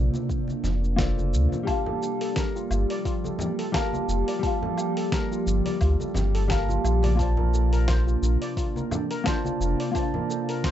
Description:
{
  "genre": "sunset chillout",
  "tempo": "87 BPM",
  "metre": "4/4",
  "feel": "swing 56% on 16ths",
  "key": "G minor",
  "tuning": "A4 = 440 Hz",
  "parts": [
    { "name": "mellow electric guitar", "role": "accompaniment", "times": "0.0-10.7 s", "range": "G3 to A5", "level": "-28 LUFS", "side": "equal", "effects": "auto-pan, ping-pong delay" },
    { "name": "ethereal airy pad", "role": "sustained chords", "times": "0.0-10.7 s", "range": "C3 to G4", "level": "-33 LUFS", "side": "right 1 dB", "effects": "ensemble chorus, built-in reverb, vintage 12-bit sampler grit" },
    { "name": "warm sub bass", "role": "bass", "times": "0.0-9.7 s", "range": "F1 to D2", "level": "-22 LUFS", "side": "equal", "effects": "tube saturation" },
    { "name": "dusty soul sampler-style drum kit", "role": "drums", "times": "0.1-10.7 s", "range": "hi-hat, shaker, snare drum, woodblock", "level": "-33 LUFS", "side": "equal", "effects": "none" },
    { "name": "congas", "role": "percussion", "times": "0.1-10.3 s", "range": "none", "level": "-34 LUFS", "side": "left 2 dB", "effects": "none" },
    { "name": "electronic kick drum", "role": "drums", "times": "0.3-10.7 s", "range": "none", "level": "-29 LUFS", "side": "equal", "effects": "overdrive" },
    { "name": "steel pan", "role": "arpeggios", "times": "1.7-10.7 s", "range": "F4 to D5", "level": "-34 LUFS", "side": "left 3 dB", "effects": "ping-pong delay" }
  ],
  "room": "light reverb",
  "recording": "rough home demo mix, nothing above 7.9 kHz",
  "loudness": "-23 LUFS",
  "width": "side -11 dB against mid",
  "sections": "0.0-10.7 A section",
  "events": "none",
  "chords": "0.0 Bbmaj9; 1.7 Gm9; 7.2 Bbmaj9",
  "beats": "0.29 0.98 | 1.67 2.36 3.05 3.74 | 4.43 5.12 5.81 6.50 | 7.19 7.88 8.57 9.26 | 9.95 10.64"
}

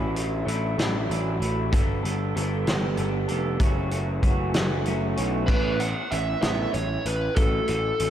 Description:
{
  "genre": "quiet-loud alternative rock",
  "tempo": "64 BPM (dotted quarters)",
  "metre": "6/8",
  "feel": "straight",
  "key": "A mixolydian",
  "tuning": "A4 = 440 Hz",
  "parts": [
    { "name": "electric guitar through a small old amp", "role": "arpeggios", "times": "0.0-8.1 s", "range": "F#2 to A4", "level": "-29 LUFS", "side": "right 1 dB", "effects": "wide subtle chorus, slapback echo" },
    { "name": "fuzz picked electric bass", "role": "bass", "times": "0.0-8.1 s", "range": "F1 to B1", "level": "-27 LUFS", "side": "equal", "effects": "overdrive" },
    { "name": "loose indie drum kit", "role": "drums", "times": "0.2-8.1 s", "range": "crash cymbal, hi-hat, kick drum, snare drum", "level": "-26 LUFS", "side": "equal", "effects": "none" },
    { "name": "fuzz lead guitar", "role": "melody", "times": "5.5-8.1 s", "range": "A4 to F#5", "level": "-27 LUFS", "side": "right 1 dB", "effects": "distortion, slapback echo" }
  ],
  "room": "moderate lush hall reverb, RT60 2.5 s",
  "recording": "big arena sound",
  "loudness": "-22 LUFS",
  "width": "side -10 dB against mid",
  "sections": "0.0-5.5 A section; 5.5-8.1 B section",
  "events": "none",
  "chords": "0.0 Dadd9/A; 1.7 Gadd9; 3.6 F#m7; 5.5 Asus2; 7.4 F#m",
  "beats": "0.78 | 1.72 2.66 | 3.60 4.55 | 5.49 6.44 | 7.38"
}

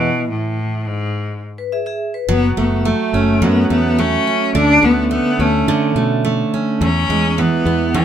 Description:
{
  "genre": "pop",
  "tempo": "106 BPM",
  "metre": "4/4",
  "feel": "straight",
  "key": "unclear",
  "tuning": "A4 = 440 Hz",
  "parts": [
    { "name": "bright cello", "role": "melody", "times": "0.0-8.0 s", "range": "G#2 to D4", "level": "-17 LUFS", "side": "left 2 dB", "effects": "none" },
    { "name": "picked steel-string acoustic guitar", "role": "accompaniment", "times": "0.0-8.0 s", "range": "E2 to C#4", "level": "-18 LUFS", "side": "right 4 dB", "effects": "none" },
    { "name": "vibraphone with hard mallets", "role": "second line", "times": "1.6-2.4 s", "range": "G#4 to E5", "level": "-21 LUFS", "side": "left 5 dB", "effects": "none" },
    { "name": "fingered electric bass", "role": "bass", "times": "2.3-8.0 s", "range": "F#1 to E3", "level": "-19 LUFS", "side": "left 1 dB", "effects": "none" }
  ],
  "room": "light reverb",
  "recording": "minimal, uncompressed stereo recording",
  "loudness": "-14 LUFS",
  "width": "side -9 dB against mid",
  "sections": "0.0-2.3 A section; 2.3-8.0 A section",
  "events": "stop 0.0-2.3",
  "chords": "0.0 E; 2.3 F#m7; 4.5 D5; 6.8 E",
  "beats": "| 0.02 0.59 1.15 1.72 | 2.29 2.85 3.42 3.98 | 4.55 5.12 5.68 6.25 | 6.81 7.38 7.94"
}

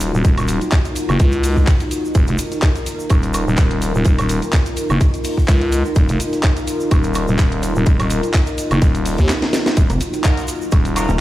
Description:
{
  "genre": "bass house",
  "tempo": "126 BPM",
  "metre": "4/4",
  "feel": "swing 54% on 16ths",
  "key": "Eb minor",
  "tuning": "A4 = 436 Hz",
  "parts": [
    { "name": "dark analog pad", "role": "sustained chords", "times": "0.0-11.2 s", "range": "Eb4 to Bb4", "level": "-25 LUFS", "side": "left 1 dB", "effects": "chorus, sidechain pumping" },
    { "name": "growling FM bass", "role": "bass", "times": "0.0-11.1 s", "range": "Eb1 to Eb2", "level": "-18 LUFS", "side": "equal", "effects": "sidechain pumping" },
    { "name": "deep reggae drum kit", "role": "drums", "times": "0.0-11.1 s", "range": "hi-hat, ride cymbal, snare drum", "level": "-34 LUFS", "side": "right 1 dB", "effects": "none" },
    { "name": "garage drum kit", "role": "drums", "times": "0.0-11.1 s", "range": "handclaps, hi-hat, snare drum, woodblock", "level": "-24 LUFS", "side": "equal", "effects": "studio ambience" },
    { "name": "egg shaker", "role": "percussion", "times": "0.0-11.2 s", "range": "none", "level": "-34 LUFS", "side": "right 3 dB", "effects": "none" },
    { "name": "deep dark ambient pad", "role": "texture", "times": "0.0-11.2 s", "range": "Eb4 to Bb4", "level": "-27 LUFS", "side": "right 1 dB", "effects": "chorus, built-in reverb, sidechain pumping" },
    { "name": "electronic kick drum", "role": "drums", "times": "0.2-10.8 s", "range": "none", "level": "-14 LUFS", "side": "equal", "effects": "studio ambience" },
    { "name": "pulsing pluck wobble bass", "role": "bass", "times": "9.9-11.2 s", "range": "Eb1 to F1", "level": "-17 LUFS", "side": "equal", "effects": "chorus, tube saturation, sidechain pumping" },
    { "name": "band-passed chord stab", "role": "stabs", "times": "10.2-11.2 s", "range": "Eb4 to Bb4", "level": "-26 LUFS", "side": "left 2 dB", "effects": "chorus, phaser, sidechain pumping, tape echo" }
  ],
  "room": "small room ambience",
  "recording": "played on a big sound system in a bare room, large studio reverb",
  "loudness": "-14 LUFS",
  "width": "side -15 dB against mid",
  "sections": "0.0-11.2 A section",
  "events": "drum fill 9.3-9.8",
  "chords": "0.0 Ebmadd9",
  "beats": "| 0.25 0.72 1.20 1.68 | 2.15 2.63 3.10 3.58 | 4.06 4.53 5.01 5.48 | 5.96 6.44 6.91 7.39 | 7.87 8.34 8.82 9.29 | 9.77 10.25 10.72 11.20"
}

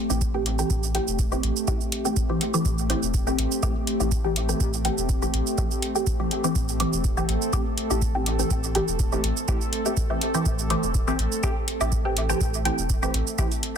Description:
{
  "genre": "dub techno",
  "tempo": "123 BPM",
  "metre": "4/4",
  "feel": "swing 53% on 16ths",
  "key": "A minor",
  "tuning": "A4 = 440 Hz",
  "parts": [
    { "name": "warbly tape-like pad", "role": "sustained chords", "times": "0.0-13.8 s", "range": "A3 to A4", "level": "-30 LUFS", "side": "equal", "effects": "chorus, built-in reverb, tremolo, sidechain pumping" },
    { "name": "filtered dub chord stab", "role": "stabs", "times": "0.1-13.5 s", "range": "E3 to G4", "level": "-27 LUFS", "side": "equal", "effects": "phaser, cassette tape, sidechain pumping, dub echo" },
    { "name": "warm sub bass", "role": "bass", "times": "0.1-13.2 s", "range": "E1 to A1", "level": "-28 LUFS", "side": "equal", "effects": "sidechain pumping" },
    { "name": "electronic cabasa and hi-hat", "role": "drums", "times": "0.1-13.7 s", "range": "none", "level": "-30 LUFS", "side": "right 4 dB", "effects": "none" },
    { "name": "electronic kick drum", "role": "drums", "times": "0.2-13.5 s", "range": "none", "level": "-27 LUFS", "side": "equal", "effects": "none" }
  ],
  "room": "light reverb",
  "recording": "dense, heavily limited modern master",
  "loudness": "-22 LUFS",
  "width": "side -7 dB against mid",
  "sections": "0.0-13.8 A section",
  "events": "none",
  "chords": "0.0 Am7",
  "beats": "0.21 | 0.70 1.19 1.68 2.17 | 2.65 3.14 3.63 4.12 | 4.61 5.09 5.58 6.07 | 6.56 7.04 7.53 8.02 | 8.51 8.99 9.48 9.97 | 10.46 10.95 11.43 11.92 | 12.41 12.90 13.38"
}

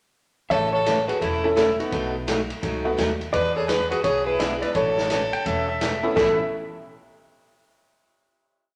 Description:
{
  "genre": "country, western swing",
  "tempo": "170 BPM",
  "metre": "4/4",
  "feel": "swing 64% on 8ths",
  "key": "A major",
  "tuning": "A4 = 444 Hz",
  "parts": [
    { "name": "hollow-body jazz guitar", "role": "melody", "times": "0.5-6.4 s", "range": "D#4 to E5", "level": "-27 LUFS", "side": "equal", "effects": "none" },
    { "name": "clear fiddle", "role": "second line", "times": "0.5-6.4 s", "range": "B3 to B4", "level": "-32 LUFS", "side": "equal", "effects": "none" },
    { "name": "picked steel-string acoustic guitar", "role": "accompaniment", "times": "0.5-6.3 s", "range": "A2 to A4", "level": "-29 LUFS", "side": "equal", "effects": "none" },
    { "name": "upright bass", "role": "bass", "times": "0.5-6.4 s", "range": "E1 to E2", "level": "-35 LUFS", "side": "equal", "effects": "none" },
    { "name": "swinging big-band drum kit", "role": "drums", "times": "0.5-6.3 s", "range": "crash cymbal, hi-hat, kick drum, ride cymbal, snare drum", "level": "-34 LUFS", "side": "equal", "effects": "none" },
    { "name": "tack piano", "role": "accompaniment", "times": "1.4-6.4 s", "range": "G#3 to A4", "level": "-28 LUFS", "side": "equal", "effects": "none" },
    { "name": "pedal steel guitar", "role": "second line", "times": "5.3-6.4 s", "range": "E5 to G5", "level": "-31 LUFS", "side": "equal", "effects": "none" }
  ],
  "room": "wet large studio reverb, RT60 1.4 s",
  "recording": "none",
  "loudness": "-23 LUFS",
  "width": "mono",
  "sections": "0.5-6.2 A section; 6.2-7.6 final chord",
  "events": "none",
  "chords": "0.5 A; 1.9 B7; 3.3 E7; 4.7 Aadd9",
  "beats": "| 0.51 0.86 1.21 1.57 | 1.92 2.27 2.62 2.98 | 3.33 3.68 4.04 4.39 | 4.75 5.10 5.45 5.81 | 6.16"
}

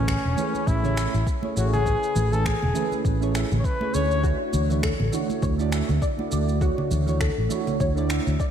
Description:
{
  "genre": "sunset chillout",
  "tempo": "101 BPM",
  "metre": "4/4",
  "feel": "swing 56% on 16ths",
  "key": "A major",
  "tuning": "A4 = 441 Hz",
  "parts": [
    { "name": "warm flugelhorn", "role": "melody", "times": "0.0-4.2 s", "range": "C#4 to C#5", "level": "-28 LUFS", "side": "left 2 dB", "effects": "tape echo" },
    { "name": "soft electric-piano-like synth keys", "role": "accompaniment", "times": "0.0-8.2 s", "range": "A3 to E5", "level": "-28 LUFS", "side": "moving between equal and right 8 dB", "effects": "chorus, phaser, auto-pan, vintage 12-bit sampler grit, tape echo" },
    { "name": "fretless electric bass", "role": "bass", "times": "0.0-8.4 s", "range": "E1 to D2", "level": "-24 LUFS", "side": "equal", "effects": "ensemble chorus" },
    { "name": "electronic finger snaps, shaker and congas", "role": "drums", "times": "0.1-8.5 s", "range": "none", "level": "-32 LUFS", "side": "right 2 dB", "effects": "overdrive, studio reverb" },
    { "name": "electronic kick drum", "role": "drums", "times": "0.1-8.5 s", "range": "none", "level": "-26 LUFS", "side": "equal", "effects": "overdrive, studio reverb" },
    { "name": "congas", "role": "percussion", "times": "0.4-7.8 s", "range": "none", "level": "-34 LUFS", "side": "right 2 dB", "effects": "none" },
    { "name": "soft round pluck", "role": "arpeggios", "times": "4.2-8.5 s", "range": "F#4 to D5", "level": "-32 LUFS", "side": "left 3 dB", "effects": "ensemble chorus, tape echo" }
  ],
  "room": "moderate lush hall reverb, RT60 1.9 s",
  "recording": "dreamy mix soaked in reverb",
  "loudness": "-21 LUFS",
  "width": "side -8 dB against mid",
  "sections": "0.0-8.5 A section",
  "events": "none",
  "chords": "0.0 Amaj9; 4.2 Dmaj9",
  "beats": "0.08 0.68 1.27 | 1.86 2.46 3.05 3.65 | 4.24 4.83 5.43 6.02 | 6.62 7.21 7.80 8.40"
}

